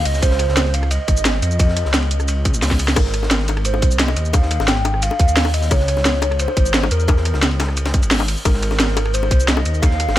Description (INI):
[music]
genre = liquid drum and bass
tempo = 175 BPM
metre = 4/4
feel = straight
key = unclear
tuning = A4 = 439 Hz
[part]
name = hollow clarinet-like synth lead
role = melody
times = 0.0-10.2 s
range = Bb4 to G5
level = -24 LUFS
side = equal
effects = wide subtle chorus, digital delay
[part]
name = dark detuned saw bass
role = bass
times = 0.0-10.2 s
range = Ab1 to G2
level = -19 LUFS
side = equal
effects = none
[part]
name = crunchy breakbeat drum kit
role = drums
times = 0.1-10.2 s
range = hi-hat, ride cymbal, snare drum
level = -27 LUFS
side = equal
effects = high-pass filter on cymbals, small room ambience, high-pass filter on hats, high-pass filter on snare, high-pass filter on room
[part]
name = drum and bass drum kit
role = drums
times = 0.1-10.2 s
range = cabasa, crash cymbal, hi-hat, rim click, snare drum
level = -20 LUFS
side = equal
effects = small room ambience
[part]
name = electronic kick drum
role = drums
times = 0.2-9.9 s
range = none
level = -16 LUFS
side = equal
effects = small room ambience
[part]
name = bongos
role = percussion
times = 3.0-10.2 s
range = none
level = -26 LUFS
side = left 7 dB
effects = none
[sound]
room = small room reverb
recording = none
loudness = -15 LUFS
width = side -13 dB against mid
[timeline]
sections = 0.0-10.2 A section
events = drum fill 2.6-3.0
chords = 0.1 Dbadd9; 3.0 Abadd9; 5.7 Dbm; 8.5 Abadd9